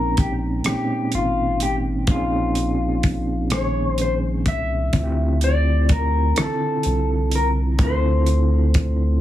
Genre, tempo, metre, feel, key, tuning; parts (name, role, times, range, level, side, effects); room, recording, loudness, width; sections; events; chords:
slow six-eight R&B; 42 BPM (dotted quarters); 6/8; straight; A4 = 440 Hz
mellow electric guitar; melody; 0.0-9.2 s; F4 to E5; -25 LUFS; left 3 dB; plate reverb
overdriven reed electric piano; accompaniment; 0.0-9.2 s; Bb2 to A5; -24 LUFS; right 2 dB; fast tremolo, plate reverb
rubbery square bass; bass; 0.0-9.2 s; Ab1 to D2; -21 LUFS; equal
damped 70s drum kit; drums; 0.2-9.0 s; hi-hat, kick drum, rim click; -21 LUFS; equal
light reverb; heavily compressed radio sound, small room ambience; -18 LUFS; side -13 dB against mid
0.0-9.2 A section
0.0 Bbm11; 4.9 Dm11